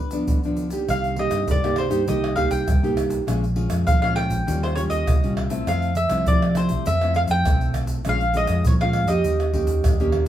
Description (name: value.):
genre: samba and choro.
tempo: 100 BPM.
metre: 4/4.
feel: straight.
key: C minor.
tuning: A4 = 440 Hz.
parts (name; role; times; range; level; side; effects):
mandolin; melody; 0.0-10.1 s; B4 to G5; -25 LUFS; equal; none.
nylon-string guitar; accompaniment; 0.0-10.3 s; G2 to G4; -25 LUFS; right 1 dB; none.
tube shaker, pandeiro, surdo and tamborim; percussion; 0.1-10.3 s; none; -24 LUFS; right 1 dB; none.
fingered electric bass with an envelope filter; bass; 0.9-10.3 s; Bb1 to F3; -24 LUFS; equal; none.
room: wet studio reverb, RT60 0.7 s.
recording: band playing live in one room.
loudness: -19 LUFS.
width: side -11 dB against mid.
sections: 0.9-10.3 A section.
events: none.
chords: 0.0 G7; 0.9 Cm7; 3.3 Bbm7; 4.5 Eb9; 5.7 Fmaj7; 8.1 Bbm7; 9.2 Eb7.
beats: 0.29 | 0.89 1.48 2.08 2.68 | 3.27 3.87 4.47 5.07 | 5.66 6.26 6.86 7.45 | 8.05 8.65 9.25 9.84.